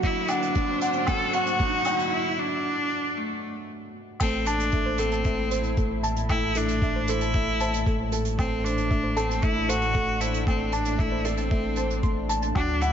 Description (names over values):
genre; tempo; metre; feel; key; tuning
piano and strings electronica; 115 BPM; 4/4; straight; A dorian; A4 = 439 Hz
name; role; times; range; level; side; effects
bright cello; melody; 0.0-12.9 s; A3 to A4; -28 LUFS; equal; ping-pong delay
lush unison pad; sustained chords; 0.0-12.9 s; A2 to D5; -34 LUFS; left 1 dB; chorus, phaser, sidechain pumping
soft round pluck; arpeggios; 0.0-12.6 s; A4 to C6; -37 LUFS; right 2 dB; chorus, cassette tape, sidechain pumping, ping-pong delay
felt-muted upright piano; riff; 0.0-12.9 s; F#3 to A5; -29 LUFS; equal; ping-pong delay
warm sub bass; bass; 0.0-12.9 s; A1 to D2; -30 LUFS; equal; sidechain pumping, high-pass filter
electronic kick drum; drums; 0.0-12.7 s; none; -26 LUFS; equal; none
jazz brush drum kit; drums; 0.0-12.9 s; crash cymbal, hi-hat, woodblock; -36 LUFS; right 2 dB; high-pass filter on hats, high-pass filter on cymbals, high-pass filter on perc, high-pass filter on room
riser; sound effects; 0.0-2.1 s; none; -34 LUFS; right 1 dB; none
room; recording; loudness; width
moderate lush hall reverb, RT60 1.8 s, small room ambience; nothing above 7.5 kHz; -23 LUFS; side -8 dB against mid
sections
0.0-4.2 A section; 4.2-12.9 B section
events
build-up 0.0-4.2; riser 0.0-2.1; break 2.1-4.2; drop 4.2-12.9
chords
0.0 D; 4.2 Am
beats
| 0.04 0.56 1.08 1.60 | 2.12 2.65 3.17 3.69 | 4.21 4.73 5.25 5.78 | 6.30 6.82 7.34 7.86 | 8.39 8.91 9.43 9.95 | 10.47 10.99 11.52 12.04 | 12.56